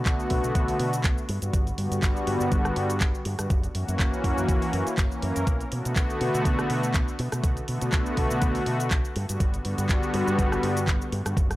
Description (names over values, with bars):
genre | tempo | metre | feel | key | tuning
nu-disco, nu disco | 122 BPM | 4/4 | swing 55% on 16ths | B minor | A4 = 440 Hz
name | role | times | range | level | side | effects
warm analog pad | accompaniment | 0.0-11.4 s | D3 to A#4 | -27 LUFS | left 1 dB | chorus, tape echo
fingered electric bass with an envelope filter | bass | 0.1-11.5 s | F#1 to B2 | -30 LUFS | equal | tube saturation, sidechain pumping
electronic kick drum | drums | 0.1-11.5 s | none | -25 LUFS | equal | none
pop drum kit | drums | 0.1-11.6 s | cabasa, handclaps, hi-hat, rim click | -34 LUFS | equal | none
room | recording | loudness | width
digital ambience | dry, gritty hardware recording, transformer saturation | -23 LUFS | side -17 dB against mid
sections
0.0-11.6 A section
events
none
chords
0.0 Bm7; 1.3 Gmaj7; 3.5 F#7; 5.5 Bm7; 9.2 Gmaj7